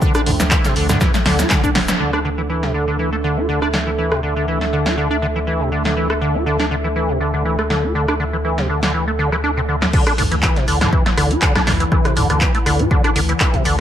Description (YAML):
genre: acid house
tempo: 121 BPM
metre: 4/4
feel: swing 54% on 16ths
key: D minor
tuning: A4 = 440 Hz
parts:
  - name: warbly tape-like pad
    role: sustained chords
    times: 0.0-13.8 s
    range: E3 to A4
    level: -26 LUFS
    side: right 2 dB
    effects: chorus, built-in reverb, sidechain pumping
  - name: liquid acid bass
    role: riff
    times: 0.0-13.8 s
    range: D2 to F4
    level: -19 LUFS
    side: equal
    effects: chorus, overdrive, tape echo
  - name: electronic kick drum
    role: drums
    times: 0.0-1.7, 9.9-13.6 s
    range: none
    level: -18 LUFS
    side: equal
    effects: none
  - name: cabasa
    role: percussion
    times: 0.0-2.0 s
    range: none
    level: -30 LUFS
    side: left 2 dB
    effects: none
  - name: warbly tape-like pad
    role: texture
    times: 0.0-9.9 s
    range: D4 to G5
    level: -27 LUFS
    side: equal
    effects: chorus, built-in reverb, sidechain pumping
  - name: punchy analog drum machine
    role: drums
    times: 0.1-13.8 s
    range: crash cymbal, handclaps, hi-hat, rim click, snare drum, toms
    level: -20 LUFS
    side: equal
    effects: none
  - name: warm sub bass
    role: bass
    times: 0.3-13.8 s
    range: D1 to D2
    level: -23 LUFS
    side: equal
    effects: sidechain pumping
room: light reverb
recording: lossy compression artefacts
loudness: -15 LUFS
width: side -10 dB against mid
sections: 0.0-2.0 A section; 2.0-9.9 B section; 9.9-13.8 A section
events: drop 0.0-2.0, 9.9-13.8; drum fill 1.0-2.0; band accent 1.9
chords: 0.0 Dm; 2.0 D5; 9.9 N.C.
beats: | 0.02 0.51 1.01 1.50 | 2.00 2.50 2.99 3.49 | 3.98 4.48 4.97 5.47 | 5.97 6.46 6.96 7.45 | 7.95 8.45 8.94 9.44 | 9.93 10.43 10.93 11.42 | 11.92 12.41 12.91 13.40